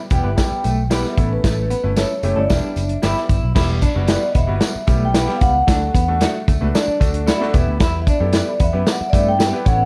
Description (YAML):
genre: uptempo 1960s-style soul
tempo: 113 BPM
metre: 4/4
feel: straight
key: E dorian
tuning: A4 = 440 Hz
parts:
  - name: vibraphone with soft mallets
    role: melody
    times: 0.1-9.9 s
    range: B4 to G5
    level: -24 LUFS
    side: equal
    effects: none
  - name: bright grand piano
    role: accompaniment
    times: 0.1-9.9 s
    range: G3 to C#5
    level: -30 LUFS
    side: equal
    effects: none
  - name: electric guitar through a small old amp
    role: riff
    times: 0.1-9.9 s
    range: A3 to E4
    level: -29 LUFS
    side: equal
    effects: tremolo
  - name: vintage muted picked electric bass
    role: bass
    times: 0.1-9.9 s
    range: E1 to G2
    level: -23 LUFS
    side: equal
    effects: tube saturation
  - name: vintage drum kit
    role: drums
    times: 0.1-9.8 s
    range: crash cymbal, hi-hat, kick drum, snare drum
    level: -21 LUFS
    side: equal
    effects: none
  - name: tambourine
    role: percussion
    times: 0.1-9.8 s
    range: none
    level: -38 LUFS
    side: equal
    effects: none
  - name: electric guitar through a small old amp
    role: stabs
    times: 0.2-9.5 s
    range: A3 to B4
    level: -30 LUFS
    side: equal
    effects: spring reverb
room: little or no reverb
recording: dark, warm production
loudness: -18 LUFS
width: mono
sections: 0.0-3.6 A section; 3.6-9.9 B section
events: none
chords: 0.0 Em; 1.2 A; 2.5 Em; 5.7 D; 7.5 Em